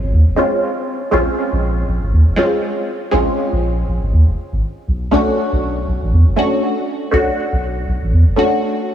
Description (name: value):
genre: deep house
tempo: 120 BPM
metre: 4/4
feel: swing 58% on 16ths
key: unclear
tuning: A4 = 439 Hz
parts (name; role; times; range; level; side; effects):
- filtered dub chord stab; stabs; 0.0-8.9 s; Ab3 to F#4; -17 LUFS; equal; phaser, ensemble chorus, analog delay
- warm sub bass; bass; 0.0-8.3 s; F1 to E2; -14 LUFS; equal; none
room: moderate lush hall reverb, RT60 3.2 s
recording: heavily compressed radio sound, multiband compression, small room ambience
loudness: -14 LUFS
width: side -10 dB against mid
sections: 0.0-8.9 A section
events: none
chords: 0.0 Bbm7; 4.9 Bm7